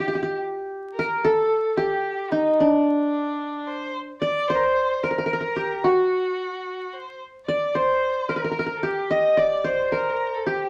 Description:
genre	arabic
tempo	110 BPM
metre	3/4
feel	straight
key	G maqam nahawand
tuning	A4 = 440 Hz
part	qanun	melody	0.0-10.7 s	D4 to Eb5	-24 LUFS	equal	none
part	rich violin	second line	0.0-10.7 s	D4 to Eb5	-32 LUFS	equal	none
room	wet club reverb, RT60 0.5 s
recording	vinyl crackle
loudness	-23 LUFS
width	mono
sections	0.9-10.7 A section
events	none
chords	none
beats	0.40 | 0.95 1.49 2.04 | 2.58 3.12 3.67 | 4.21 4.76 5.30 | 5.84 6.39 6.93 | 7.48 8.02 8.57 | 9.11 9.66 10.20

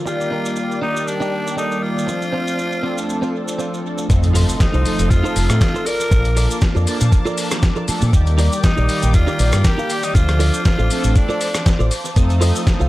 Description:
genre	nu-disco, nu disco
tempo	119 BPM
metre	4/4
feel	swing 55% on 16ths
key	F mixolydian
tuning	A4 = 439 Hz
part	mellow synth brass	accompaniment	0.0-12.9 s	Eb3 to A5	-24 LUFS	equal	chorus, phaser, cassette tape, sidechain pumping, analog delay
part	rich studio string section	sustained chords	0.0-12.9 s	Eb3 to Eb6	-30 LUFS	equal	sidechain pumping
part	growling tenor saxophone	melody	0.1-11.9 s	D4 to Bb4	-24 LUFS	equal	analog delay
part	direct-recorded clean electric guitar	riff	0.1-12.9 s	C4 to F5	-26 LUFS	right 2 dB	wide subtle chorus, analog delay
part	maracas	percussion	0.1-12.9 s	none	-33 LUFS	right 1 dB	analog delay
part	fingered electric bass with an envelope filter	bass	4.1-12.9 s	F1 to Bb2	-16 LUFS	equal	none
part	dusty soul sampler-style drum kit	drums	4.1-12.8 s	hi-hat, rim click, shaker, snare drum	-24 LUFS	left 1 dB	low-pass filter on hats, low-pass filter on perc, low-pass filter on snare, analog delay
part	electronic kick drum	drums	4.1-12.8 s	none	-15 LUFS	equal	none
part	impact	sound effects	4.1-6.1 s	none	-27 LUFS	equal	none
room	light reverb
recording	echo-heavy mix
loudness	-15 LUFS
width	side -17 dB against mid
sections	0.0-4.1 A section; 4.1-12.9 B section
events	drop 4.1-12.9; impact 4.1-6.1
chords	0.1 Ebmaj7; 2.1 Dm7; 4.1 F7; 5.9 Bbmaj7; 8.1 Ebmaj7; 10.1 Dm7; 12.2 F7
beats	| 0.07 0.57 1.07 1.58 | 2.08 2.59 3.09 3.59 | 4.10 4.60 5.11 5.61 | 6.12 6.62 7.12 7.63 | 8.13 8.64 9.14 9.64 | 10.15 10.65 11.16 11.66 | 12.17 12.67

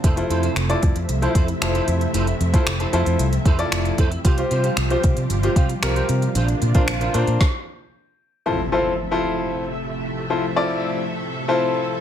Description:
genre	dance-pop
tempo	114 BPM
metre	4/4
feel	straight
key	F major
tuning	A4 = 438 Hz
part	string machine, cellos	sustained chords	0.0-12.0 s	C3 to E5	-27 LUFS	equal	ensemble chorus, sidechain pumping
part	clean electric guitar	riff	0.0-7.3 s	D4 to C5	-28 LUFS	right 4 dB	ensemble chorus
part	vintage muted fingered electric bass	bass	0.0-7.4 s	F1 to C3	-22 LUFS	equal	sidechain pumping
part	smooth R&B drum kit	drums	0.0-7.5 s	finger snaps, hi-hat, kick drum, snare drum	-20 LUFS	equal	none
part	warm concert grand piano	accompaniment	0.2-11.9 s	C4 to D5	-23 LUFS	left 2 dB	sidechain pumping
part	swell and impact	sound effects	6.3-10.6 s	none	-33 LUFS	right 1 dB	none
room	light reverb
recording	none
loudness	-18 LUFS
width	side -10 dB against mid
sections	0.0-8.5 A section; 8.5-12.0 B section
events	swell 6.3-8.5; stop 7.4-8.5; impact 8.5-10.6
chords	0.0 Fmaj7; 4.2 Csus4; 6.4 Bbadd9; 7.4 N.C.; 8.5 Fmaj7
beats	| 0.04 0.56 1.09 1.62 | 2.14 2.67 3.20 3.72 | 4.25 4.78 5.30 5.83 | 6.35 6.88 7.41 7.93 | 8.46 8.98 9.51 10.04 | 10.56 11.09 11.62

